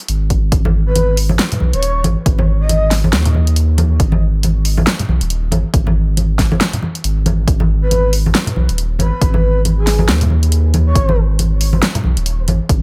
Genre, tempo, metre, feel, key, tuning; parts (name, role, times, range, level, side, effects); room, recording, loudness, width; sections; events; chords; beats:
deep dubstep; 138 BPM; 4/4; swing 58% on 16ths, half-time; G# minor; A4 = 442 Hz
saturated sub bass; bass; 0.1-12.8 s; D#1 to D#2; -17 LUFS; equal; tube saturation
deep house drum kit; drums; 0.1-12.8 s; hi-hat, snare drum; -21 LUFS; equal; small room ambience
electronic kick drum; drums; 0.3-12.8 s; -18 LUFS; equal; small room ambience
congas; percussion; 0.7-12.6 s; -23 LUFS; equal
breathy flute-like synth lead; melody; 0.9-2.9, 7.8-11.2 s; G#4 to D#5; -24 LUFS; equal; analog chorus, dub echo
digital ambience; -15 LUFS; mono
0.0-12.8 A section
0.0 G#5
0.09 | 0.52 0.95 1.39 1.82 | 2.26 2.69 3.13 3.56 | 4.00 4.43 4.87 5.30 | 5.74 6.17 6.61 7.04 | 7.48 7.91 8.35 8.78 | 9.22 9.65 10.09 10.52 | 10.96 11.39 11.82 12.26 | 12.69